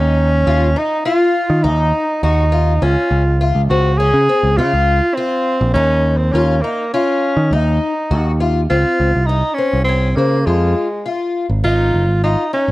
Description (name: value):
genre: progressive instrumental, band music in an uneven meter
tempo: 102 BPM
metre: 5/4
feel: straight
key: unclear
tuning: A4 = 439 Hz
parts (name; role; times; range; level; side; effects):
- warm tenor saxophone; melody; 0.0-12.7 s; Ab3 to Ab4; -17 LUFS; right 1 dB; none
- fingerpicked twelve-string acoustic guitar; arpeggios; 0.0-12.7 s; C4 to Gb4; -21 LUFS; left 4 dB; slapback echo
- picked electric bass; bass; 0.0-12.7 s; Gb1 to Eb3; -15 LUFS; equal; none
room: small room ambience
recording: dry, close 1970s-style studio recording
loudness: -13 LUFS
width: side -18 dB against mid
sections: 0.0-8.7 A section; 8.7-12.7 B section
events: none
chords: 0.0 Eb7(no3); 2.8 Dbmaj7; 5.8 Eb7(no3); 8.7 Dbmaj7; 11.6 Ab7(no3)